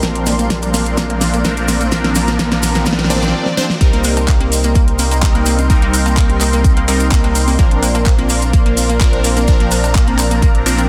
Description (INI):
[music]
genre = progressive house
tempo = 127 BPM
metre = 4/4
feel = straight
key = C minor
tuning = A4 = 440 Hz
[part]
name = warm analog pad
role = sustained chords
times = 0.0-10.9 s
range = Bb4 to C6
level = -27 LUFS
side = equal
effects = chorus, sidechain pumping
[part]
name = analog pluck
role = arpeggios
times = 0.0-10.9 s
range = Bb3 to C4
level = -24 LUFS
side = equal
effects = chorus, sidechain pumping, digital delay
[part]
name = supersaw stab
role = stabs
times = 0.0-10.9 s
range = F3 to D5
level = -22 LUFS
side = equal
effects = phaser, sidechain pumping, digital delay
[part]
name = round analog bass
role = bass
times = 0.0-10.9 s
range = Bb1 to C2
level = -20 LUFS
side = equal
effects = sidechain pumping
[part]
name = electronic kick drum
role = drums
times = 0.0-10.5 s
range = none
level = -15 LUFS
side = equal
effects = high-pass filter on kick
[part]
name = pop drum kit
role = drums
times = 0.0-10.9 s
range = handclaps, hi-hat, snare drum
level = -22 LUFS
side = equal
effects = none
[part]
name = maracas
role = percussion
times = 0.0-10.9 s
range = none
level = -28 LUFS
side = equal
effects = none
[part]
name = riser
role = sound effects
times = 0.1-3.3 s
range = none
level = -30 LUFS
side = equal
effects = none
[part]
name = woodblock, cowbell and congas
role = percussion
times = 4.0-10.8 s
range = none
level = -28 LUFS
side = equal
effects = sidechain pumping on perc
[sound]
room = light reverb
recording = dense, heavily limited modern master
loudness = -14 LUFS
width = mono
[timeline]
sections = 0.0-3.8 A section; 3.8-10.9 B section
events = build-up 0.0-3.8; drum fill 0.0-3.3, 3.5-3.8; filter sweep on synth pluck 0.0-3.8; filter sweep on supersaw synth 0.0-3.8; break 3.3-3.8; drop 3.8-10.9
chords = 0.0 Bbadd9; 3.8 Cm7; 7.6 Bbadd9